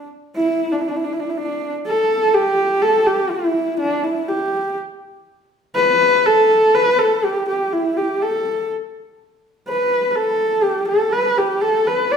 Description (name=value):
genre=mongolian traditional, Mongolian folk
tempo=122 BPM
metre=4/4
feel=straight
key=D zhi mode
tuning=A4 = 440 Hz
part: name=dark horsehead fiddle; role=solo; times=0.0-12.2 s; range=D4 to D5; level=-16 LUFS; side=equal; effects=none
room=wet large studio reverb, RT60 1.3 s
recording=band playing live in one room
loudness=-16 LUFS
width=side -7 dB against mid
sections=0.0-1.8 A section; 1.8-12.2 B section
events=none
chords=none